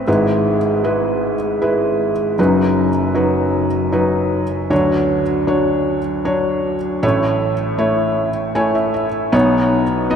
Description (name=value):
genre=folk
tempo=78 BPM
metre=3/4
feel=straight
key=unclear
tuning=A4 = 440 Hz
part: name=felt-muted upright piano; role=solo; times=0.0-10.2 s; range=F#1 to G#5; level=-15 LUFS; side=equal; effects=none
room=wet cathedral reverb, RT60 4.8 s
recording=in a vast, echoing space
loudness=-15 LUFS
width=side -7 dB against mid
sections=0.0-4.7 A section; 4.7-10.2 B section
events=none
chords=0.1 E/G#; 2.4 B/F#; 4.7 Dmaj7; 7.0 A; 9.3 Badd9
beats=| 0.07 0.84 1.61 | 2.38 3.16 3.93 | 4.71 5.49 6.26 | 7.03 7.80 8.57 | 9.34 10.11